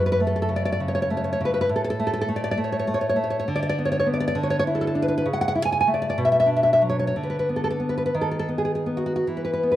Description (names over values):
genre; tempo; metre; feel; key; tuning
romantic piece for solo classical guitar; 50-69 BPM (dotted quarters); 6/8; rubato; F# minor; A4 = 440 Hz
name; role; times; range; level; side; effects
nylon-string guitar; solo; 0.0-9.8 s; F#2 to G#5; -21 LUFS; equal; none
room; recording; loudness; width
light reverb; dark, warm production; -21 LUFS; side -13 dB against mid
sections
0.0-9.8 A section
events
none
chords
0.0 F#m; 1.7 N.C.; 3.5 Bm/D; 4.4 Bm11/D; 5.3 A/C#; 6.2 Bm; 7.1 Bm/D; 8.1 B/D#; 9.3 E5